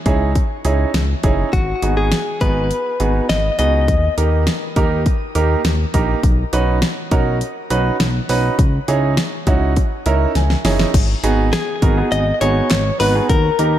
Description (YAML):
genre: synth-pop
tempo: 102 BPM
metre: 4/4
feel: straight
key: G# minor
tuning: A4 = 439 Hz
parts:
  - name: clear concert grand piano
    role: accompaniment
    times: 0.1-13.8 s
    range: A#3 to G#5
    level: -20 LUFS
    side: right 4 dB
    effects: shimmer reverb
  - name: smooth gliding synth bass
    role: bass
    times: 0.1-13.8 s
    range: F#1 to D#2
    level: -18 LUFS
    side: equal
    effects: none
  - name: pop drum kit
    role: drums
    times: 0.1-13.7 s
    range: crash cymbal, handclaps, hi-hat, kick drum, snare drum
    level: -18 LUFS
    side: equal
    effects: none
  - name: direct-recorded clean electric guitar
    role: melody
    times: 1.5-4.1, 11.5-13.8 s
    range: F#4 to D#5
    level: -20 LUFS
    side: left 3 dB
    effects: shimmer reverb, ping-pong delay
room: light reverb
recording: dark, warm production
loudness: -14 LUFS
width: side -12 dB against mid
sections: 0.0-10.9 A section; 10.9-13.8 B section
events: grand piano fill 9.8-10.9; drum fill 10.4-10.9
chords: 0.0 C#madd9; 1.5 G#m7; 3.9 D#; 6.2 Badd9; 8.6 C#madd9; 10.9 G#m7